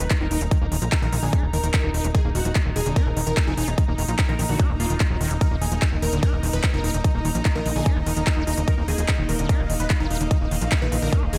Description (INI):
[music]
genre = psychedelic trance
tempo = 147 BPM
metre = 4/4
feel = straight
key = unclear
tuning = A4 = 440 Hz
[part]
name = supersaw stab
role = melody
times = 0.0-11.4 s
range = F4 to Cb5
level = -35 LUFS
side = equal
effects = phaser, sidechain pumping, delay
[part]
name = evolving wavetable pad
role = sustained chords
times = 0.0-11.4 s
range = Eb4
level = -38 LUFS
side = equal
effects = ensemble chorus, built-in reverb, sidechain pumping
[part]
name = screaming distorted acid line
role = riff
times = 0.0-11.4 s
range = D3 to Eb4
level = -33 LUFS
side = equal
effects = distortion, chorus, sidechain pumping, delay
[part]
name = plucky analog bass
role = bass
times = 0.0-11.4 s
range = Eb1 to Bb1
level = -27 LUFS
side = equal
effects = none
[part]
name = big-room dance drum kit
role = drums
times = 0.0-11.4 s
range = handclaps, hi-hat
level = -32 LUFS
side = equal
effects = none
[part]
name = impact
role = sound effects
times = 0.0-0.5 s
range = none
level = barely audible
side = none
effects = none
[part]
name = airy breathy pad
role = texture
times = 0.0-11.4 s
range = Bb3 to Bb5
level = -35 LUFS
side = equal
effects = chorus, sidechain pumping
[part]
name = electronic kick drum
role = drums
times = 0.1-11.2 s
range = none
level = -23 LUFS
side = equal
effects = overdrive
[sound]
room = light reverb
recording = none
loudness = -22 LUFS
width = mono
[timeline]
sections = 0.0-11.4 A section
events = impact 0.0-0.5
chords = 0.0 Eb5